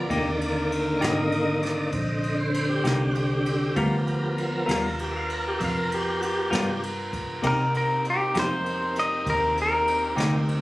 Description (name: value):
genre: slow blues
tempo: 66 BPM (dotted quarters)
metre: 12/8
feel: straight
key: C minor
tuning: A4 = 440 Hz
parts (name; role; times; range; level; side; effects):
- tonewheel organ; sustained chords; 0.0-10.6 s; D3 to F5; -28 LUFS; equal; slow rotary speaker, overdrive, chorus vibrato
- warm saxophone section; sustained chords; 0.0-10.6 s; B3 to C5; -32 LUFS; equal; none
- vintage muted fingered electric bass; bass; 0.0-10.6 s; Ab1 to C3; -29 LUFS; equal; none
- semi-hollow electric guitar; accompaniment; 0.1-10.4 s; C3 to A#4; -27 LUFS; left 2 dB; harmonic tremolo
- jazz brush drum kit; drums; 0.1-10.6 s; crash cymbal, kick drum, ride cymbal, snare drum; -33 LUFS; right 1 dB; none
- clean lap steel guitar; melody; 7.5-10.2 s; G4 to Eb5; -24 LUFS; left 1 dB; plate reverb
room: moderate club reverb, RT60 0.6 s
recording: recorded on a phone in the room, club ambience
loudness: -22 LUFS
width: side -18 dB against mid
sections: 0.0-7.4 A section; 7.4-10.6 A section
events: tonewheel organ solo 0.0-7.4; electric slide guitar solo 7.4-10.6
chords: 0.1 Cm7; 3.8 G7#9; 7.4 Cm7